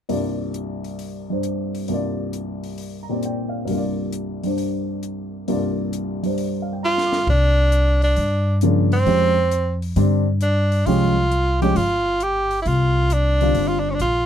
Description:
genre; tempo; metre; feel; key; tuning
modal jazz; 134 BPM; 4/4; swing 68% on 8ths; unclear; A4 = 440 Hz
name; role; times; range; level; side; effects
warm baby grand piano; accompaniment; 0.1-14.0 s; C2 to F6; -22 LUFS; left 1 dB; none
compact cocktail drum kit; drums; 0.1-14.1 s; hi-hat, kick drum, ride cymbal, snare drum; -34 LUFS; left 2 dB; none
edgy tenor saxophone; melody; 6.8-14.3 s; C4 to G4; -20 LUFS; right 1 dB; none
upright bass; bass; 7.3-14.3 s; G1 to G2; -19 LUFS; equal; none
room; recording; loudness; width
light reverb; dark, warm production; -18 LUFS; side -9 dB against mid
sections
0.1-7.3 A section; 7.3-14.3 B section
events
drum fill 6.8-7.3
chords
0.1 C9sus4; 7.3 Csus4

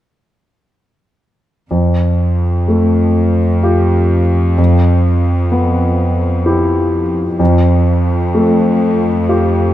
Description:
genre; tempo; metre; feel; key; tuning
cinematic, emotional film score for orchestra; 63 BPM; 3/4; rubato; F lydian; A4 = 440 Hz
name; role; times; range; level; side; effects
warm concert grand piano; accompaniment; 1.7-9.7 s; F2 to G4; -12 LUFS; equal; none
rich symphonic cello section; bass; 1.7-9.7 s; F2; -16 LUFS; equal; none
room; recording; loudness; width
moderate scoring stage reverb, RT60 1.8 s; close, detailed microphones; -11 LUFS; side -13 dB against mid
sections
1.7-9.7 A section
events
none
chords
1.7 Fadd9; 4.6 Em/F; 7.4 Fadd9

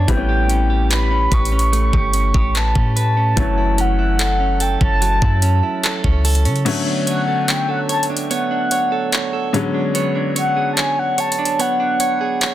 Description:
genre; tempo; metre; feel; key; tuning
contemporary R&B; 73 BPM; 4/4; straight; B minor; A4 = 440 Hz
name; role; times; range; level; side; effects
mellow horn-like synth lead; melody; 0.0-12.5 s; F#5 to C#6; -21 LUFS; left 1 dB; chorus, tape echo
clear baby grand piano; accompaniment; 0.0-12.5 s; D3 to C#4; -24 LUFS; left 4 dB; none
direct-recorded clean electric guitar; arpeggios; 0.0-12.5 s; F#3 to C#5; -24 LUFS; right 7 dB; tape echo
soft 808-style bass; bass; 0.0-6.6 s; F#1 to C#3; -17 LUFS; equal; none
smooth R&B drum kit; drums; 0.1-12.5 s; crash cymbal, handclaps, hi-hat, kick drum; -20 LUFS; equal; none
room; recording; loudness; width
digital ambience; dense, heavily limited modern master; -15 LUFS; side -13 dB against mid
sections
0.0-6.7 A section; 6.7-12.5 B section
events
kick muted 6.7-12.5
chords
0.1 A9; 3.4 F#m7; 6.7 Bm9; 9.5 Bm69/D

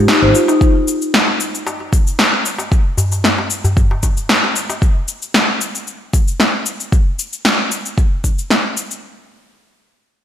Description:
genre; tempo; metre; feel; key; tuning
organic downtempo; 114 BPM; 4/4; swing 53% on 16ths; unclear; A4 = 440 Hz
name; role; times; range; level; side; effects
marimba with medium mallets; arpeggios; 0.0-0.6 s; Eb4 to C5; -15 LUFS; left 1 dB; low-pass filter, tape echo, slapback echo
electronic snare drum and cabasa; drums; 0.1-9.0 s; none; -15 LUFS; equal; slapback echo
darbuka; percussion; 0.2-4.8 s; none; -21 LUFS; left 1 dB; none
electronic kick drum; drums; 0.6-8.4 s; none; -14 LUFS; equal; none
room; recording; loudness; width
moderate recital hall reverb, RT60 1.4 s; big arena sound; -13 LUFS; side -10 dB against mid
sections
0.0-9.0 A section; 9.0-10.2 B section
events
none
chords
none

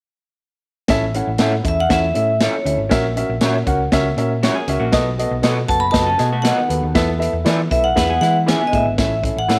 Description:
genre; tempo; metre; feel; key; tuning
uptempo 1960s-style soul; 119 BPM; 4/4; straight; A major; A4 = 439 Hz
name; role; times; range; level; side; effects
dark upright piano; accompaniment; 0.9-9.6 s; B3 to F#5; -24 LUFS; equal; none
hollow-body short-scale picked electric bass; bass; 0.9-9.6 s; F#1 to E3; -24 LUFS; equal; none
natural country drum kit; drums; 0.9-9.6 s; hi-hat, kick drum, snare drum; -23 LUFS; equal; none
electric guitar through a small old amp; stabs; 1.4-9.6 s; B3 to E5; -28 LUFS; equal; none
vibraphone with hard mallets; melody; 1.7-9.6 s; C#5 to B5; -21 LUFS; equal; none
vintage hollow-body jazz guitar; riff; 4.4-9.0 s; D3 to B4; -29 LUFS; equal; none
room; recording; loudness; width
light reverb; none; -18 LUFS; mono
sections
0.9-9.0 A section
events
none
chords
0.9 A; 2.9 F#7/A#; 4.9 B7; 7.0 Esus4; 8.0 E; 9.0 A

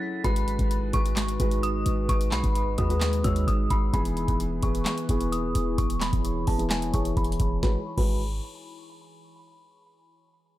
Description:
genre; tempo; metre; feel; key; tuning
hip hop, trap; 130 BPM; 4/4; half-time; G# minor; A4 = 440 Hz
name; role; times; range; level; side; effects
dark detuned synth bell; melody; 0.0-8.2 s; G#5 to A6; -33 LUFS; left 1 dB; chorus, low-pass filter, tape echo
warm concert grand piano; accompaniment; 0.0-8.2 s; E3 to C#5; -31 LUFS; equal; low-pass filter
dark analog pad; sustained chords; 0.0-7.8 s; E3 to C#5; -34 LUFS; equal; chorus, phaser, low-pass filter
clean 808-style bass; bass; 0.2-8.4 s; E1 to D#2; -28 LUFS; equal; none
booming analog drum machine; drums; 0.2-8.2 s; crash cymbal, handclaps, hi-hat, kick drum, snare drum; -28 LUFS; equal; none
room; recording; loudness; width
little or no reverb; echo-heavy mix; -23 LUFS; side -15 dB against mid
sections
0.2-7.6 A section; 7.6-9.5 B section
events
break 0.0; filter sweep 0.2-7.6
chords
0.2 G#m7; 3.9 E; 7.6 G#m7

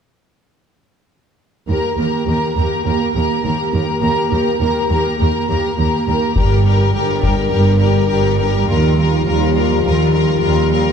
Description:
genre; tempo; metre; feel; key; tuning
cinematic, epic orchestral film score; 103 BPM; 4/4; straight; unclear; A4 = 443 Hz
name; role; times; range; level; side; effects
warm symphonic violin section; second line; 1.7-10.9 s; F4 to Bb5; -22 LUFS; left 2 dB; none
dark studio viola section; accompaniment; 1.7-10.9 s; G3 to G4; -20 LUFS; right 1 dB; none
rich symphonic cello section; bass; 1.7-10.9 s; Eb2 to G2; -19 LUFS; right 2 dB; none
rich symphonic double bass section; bass; 1.7-10.9 s; G1 to Eb2; -20 LUFS; right 3 dB; none
clear symphonic violin section; melody; 6.4-10.9 s; Bb4; -22 LUFS; left 6 dB; none
dark French horn section; sustained chords; 6.4-10.9 s; D3 to Bb4; -20 LUFS; left 7 dB; none
solo taiko drums; drums; 6.4-7.5 s; none; -20 LUFS; left 2 dB; none
room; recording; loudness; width
wet concert hall reverb, RT60 2.5 s; dark, warm production; -13 LUFS; side -7 dB against mid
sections
1.7-6.4 A section; 6.4-10.9 B section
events
build-up 6.4-10.9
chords
1.7 Eb; 6.4 Gm; 8.7 Ebadd9

